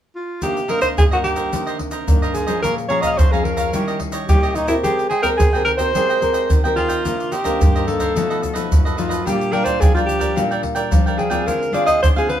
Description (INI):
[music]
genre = samba and choro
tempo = 109 BPM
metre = 4/4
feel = straight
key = C minor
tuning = A4 = 439 Hz
[part]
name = breathy alto saxophone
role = melody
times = 0.2-12.4 s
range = Eb4 to F5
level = -20 LUFS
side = right 1 dB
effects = none
[part]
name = cavaquinho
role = accompaniment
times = 0.4-12.4 s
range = D4 to Bb5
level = -25 LUFS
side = right 3 dB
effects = none
[part]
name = nylon-string guitar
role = accompaniment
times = 0.4-12.4 s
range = F2 to Bb4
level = -23 LUFS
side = left 2 dB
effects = none
[part]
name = tube shaker, surdo and pandeiro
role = percussion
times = 0.4-12.4 s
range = none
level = -19 LUFS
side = equal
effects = none
[sound]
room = moderate studio reverb, RT60 0.6 s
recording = band playing live in one room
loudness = -16 LUFS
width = side -10 dB against mid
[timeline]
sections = 0.4-12.4 A section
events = none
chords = 0.4 Cm9; 2.6 Bbm7; 3.7 Eb7b9; 4.8 Abmaj9; 7.1 Cm9; 8.2 B7#11; 9.3 Bb6; 11.5 Dm7b5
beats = | 0.42 0.98 1.53 2.08 | 2.63 3.19 3.74 4.29 | 4.84 5.39 5.95 6.50 | 7.05 7.60 8.16 8.71 | 9.26 9.81 10.37 10.92 | 11.47 12.02